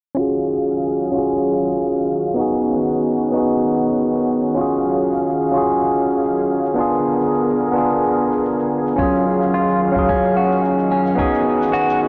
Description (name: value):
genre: sunset chillout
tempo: 109 BPM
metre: 4/4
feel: swing 53% on 16ths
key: Eb minor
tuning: A4 = 440 Hz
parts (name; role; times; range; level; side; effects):
- bell-like tine electric piano; accompaniment; 0.1-12.1 s; Gb3 to F5; -19 LUFS; equal; low-pass filter, tape echo
- lush unison pad; sustained chords; 0.2-12.1 s; D3 to F5; -26 LUFS; equal; chorus
- shaker; drums; 0.2-12.0 s; none; -57 LUFS; equal; none
- clean electric guitar; arpeggios; 9.0-12.0 s; Db4 to Gb4; -24 LUFS; equal; tape echo
- electronic kick drum; drums; 9.0-11.3 s; none; -28 LUFS; equal; none
room: moderate lush hall reverb, RT60 1.8 s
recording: blown-out, overdriven recording, overdrive, low-pass filter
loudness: -18 LUFS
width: mono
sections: 0.2-12.1 A section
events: filter sweep on tine electric piano 0.2-12.1; filter sweep 0.2-12.1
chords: 0.2 Ebm11; 2.4 Db9sus4; 4.6 Ebm11; 6.8 Bb7b9; 9.0 Ebm11; 11.2 Db9sus4